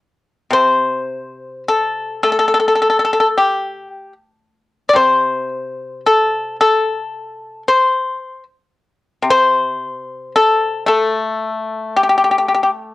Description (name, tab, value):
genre	chinese traditional, Chinese solo plucked strings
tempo	56 BPM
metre	4/4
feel	rubato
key	unclear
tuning	A4 = 440 Hz
part	pipa	solo	0.5-12.9 s	C3 to D5	-14 LUFS	left 2 dB	cassette tape
room	light reverb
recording	home recording on cassette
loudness	-13 LUFS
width	side -17 dB against mid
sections	0.0-12.9 A section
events	none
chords	none